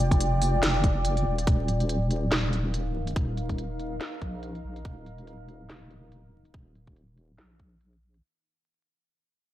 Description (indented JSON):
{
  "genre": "deep dubstep",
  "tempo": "142 BPM",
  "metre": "4/4",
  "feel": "swing 58% on 16ths, half-time",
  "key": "unclear",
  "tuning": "A4 = 444 Hz",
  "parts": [
    { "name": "deep dark ambient pad", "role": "sustained chords", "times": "0.0-8.2 s", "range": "Eb4 to G5", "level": "-33 LUFS", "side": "equal", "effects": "chorus, built-in reverb" },
    { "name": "deep soft wobble bass", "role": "bass", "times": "0.0-8.2 s", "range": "Eb1 to Bb1", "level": "-28 LUFS", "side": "equal", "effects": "chorus, tube saturation" },
    { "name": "electronic kick drum", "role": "drums", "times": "0.1-7.7 s", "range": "none", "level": "-26 LUFS", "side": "equal", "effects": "none" },
    { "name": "garage drum kit", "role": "drums", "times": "0.1-8.2 s", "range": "hi-hat, snare drum", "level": "-31 LUFS", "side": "equal", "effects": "low-pass filter on hats, low-pass filter on cymbals, low-pass filter on snare, low-pass filter on room" }
  ],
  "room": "light reverb",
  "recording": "vinyl crackle",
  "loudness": "-24 LUFS",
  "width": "side -14 dB against mid",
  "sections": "0.0-8.2 A section",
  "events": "fade-out 0.0-8.2",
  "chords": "0.0 F5; 1.5 Eb5"
}